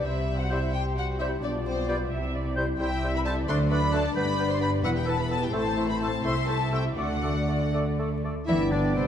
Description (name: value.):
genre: quick classical-period movement for symphony orchestra.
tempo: 79-89 BPM (dotted quarters).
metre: 6/8.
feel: rubato.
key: G major.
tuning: A4 = 439 Hz.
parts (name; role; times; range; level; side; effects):
warm studio violin section; melody; 0.0-9.0 s; B4 to C6; -32 LUFS; left 3 dB; none.
dark studio violin section; second line; 0.0-9.1 s; B3 to E5; -36 LUFS; left 2 dB; none.
dark studio viola section; accompaniment; 0.0-9.1 s; G3 to E5; -35 LUFS; right 1 dB; none.
warm French horn section; sustained chords; 0.0-9.1 s; F#3 to G4; -33 LUFS; left 3 dB; none.
warm studio cello section; bass; 0.0-9.0 s; E2 to E3; -32 LUFS; right 1 dB; none.
warm studio double bass section; bass; 0.0-9.1 s; E1 to D2; -30 LUFS; right 1 dB; none.
mellow small flute group; second line; 0.5-9.1 s; G5 to G6; -39 LUFS; left 1 dB; none.
warm clarinet; second line; 0.5-9.1 s; C4 to A4; -36 LUFS; left 1 dB; none.
warm oboe; second line; 0.5-9.1 s; B4 to D5; -39 LUFS; equal; none.
mellow bassoon; accompaniment; 0.5-9.1 s; G3 to B3; -36 LUFS; equal; none.
room: wet scoring stage reverb, RT60 2.0 s.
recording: dark, warm production, vinyl crackle.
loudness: -24 LUFS.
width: side -9 dB against mid.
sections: 0.0-8.5 A section.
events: none.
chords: 0.0 C5; 1.4 G7/B; 2.1 C; 3.5 D; 4.2 G; 4.8 E5; 5.5 Am; 7.0 D; 8.5 G.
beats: | 0.04 0.74 | 1.43 2.11 | 2.80 3.48 | 4.16 4.84 | 5.53 6.24 | 6.98 7.73 | 8.48.